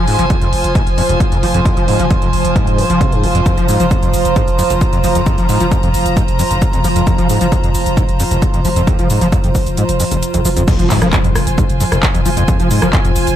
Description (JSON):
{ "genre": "driving peak-time techno", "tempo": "133 BPM", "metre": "4/4", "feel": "straight", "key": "F minor", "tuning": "A4 = 440 Hz", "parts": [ { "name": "overdriven acid bass", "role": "riff", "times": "0.0-13.1 s", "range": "F1 to F3", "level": "-18 LUFS", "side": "equal", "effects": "distortion, ensemble chorus, sidechain pumping, ping-pong delay" }, { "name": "growling 808-style bass", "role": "bass", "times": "0.0-13.4 s", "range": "F1", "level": "-20 LUFS", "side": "equal", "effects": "tube saturation, sidechain pumping, low-pass filter" }, { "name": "deep dark ambient pad", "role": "drone", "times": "0.0-13.4 s", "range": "F3", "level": "-21 LUFS", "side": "equal", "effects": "chorus, built-in reverb, sidechain pumping" }, { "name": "warm chamber string section", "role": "texture", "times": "0.0-13.4 s", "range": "F4 to Bb5", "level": "-20 LUFS", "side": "right 1 dB", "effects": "sidechain pumping" }, { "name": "techno drum kit", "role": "drums", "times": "0.1-13.4 s", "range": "crash cymbal, handclaps, hi-hat, rim click, shaker", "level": "-22 LUFS", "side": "equal", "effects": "sidechain pumping on hats, sidechain pumping on toms, sidechain pumping on perc, sidechain pumping on cymbals" }, { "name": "electronic kick drum", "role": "drums", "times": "0.3-13.0 s", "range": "none", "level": "-15 LUFS", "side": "equal", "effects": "none" }, { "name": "impact", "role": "sound effects", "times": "10.7-12.5 s", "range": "none", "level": "-22 LUFS", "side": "equal", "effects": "none" } ], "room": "little or no reverb", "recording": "none", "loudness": "-11 LUFS", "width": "side -11 dB against mid", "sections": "0.0-10.7 A section; 10.7-13.4 B section", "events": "kick drops out 9.8-10.7; drop 10.7-13.4; impact 10.7-12.5", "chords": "0.0 Fm" }